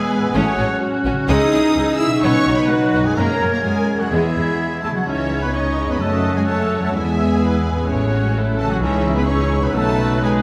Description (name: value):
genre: cinematic, heroic adventure film score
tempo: 128 BPM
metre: 4/4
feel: straight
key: E major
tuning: A4 = 440 Hz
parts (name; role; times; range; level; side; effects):
- clear symphonic violin section; melody; 0.0-10.3 s; E5 to E6; -32 LUFS; equal; none
- clear clarinet; second line; 0.0-10.4 s; B3 to E4; -30 LUFS; equal; none
- mellow small flute group; second line; 0.0-10.4 s; E6 to G#6; -31 LUFS; equal; none
- clear studio viola section; accompaniment; 0.0-10.4 s; F#4 to E5; -29 LUFS; equal; none
- dark French horn section; sustained chords; 0.0-10.4 s; E3 to D#4; -26 LUFS; equal; none
- concert harp; arpeggios; 0.0-10.4 s; E2 to G#5; -31 LUFS; equal; none
- bright trumpet section; stabs; 0.0-10.4 s; C#4 to E5; -28 LUFS; equal; none
- rich symphonic cello section; bass; 0.0-10.4 s; E3 to E4; -26 LUFS; equal; none
- rich studio violin section; second line; 0.3-10.4 s; G#3 to G#4; -30 LUFS; equal; none
- rich symphonic double bass section; bass; 0.4-10.4 s; A1 to F#2; -24 LUFS; equal; none
room: wet scoring stage reverb, RT60 1.6 s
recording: none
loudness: -18 LUFS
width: mono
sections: 0.0-10.4 A section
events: none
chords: 0.4 A6; 1.3 C#madd9; 2.2 B; 3.2 F#add9; 4.1 E; 5.1 C#madd9; 6.0 F#m; 7.0 E; 7.9 A6; 8.8 C#madd9; 9.8 B